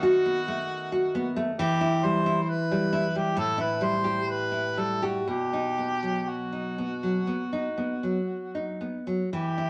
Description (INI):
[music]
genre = romantic duo for harmonica and classical guitar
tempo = 57-69 BPM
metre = 4/4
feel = rubato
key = unclear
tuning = A4 = 440 Hz
[part]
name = warm harmonica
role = melody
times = 0.0-9.7 s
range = F#4 to C5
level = -32 LUFS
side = equal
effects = none
[part]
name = nylon-string guitar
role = accompaniment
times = 0.0-9.7 s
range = A2 to G4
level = -29 LUFS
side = equal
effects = none
[sound]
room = moderate studio reverb, RT60 0.9 s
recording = none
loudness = -28 LUFS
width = mono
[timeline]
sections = 0.0-9.7 A section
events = none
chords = 0.0 B7/D#; 1.6 Em; 3.4 A5; 5.3 B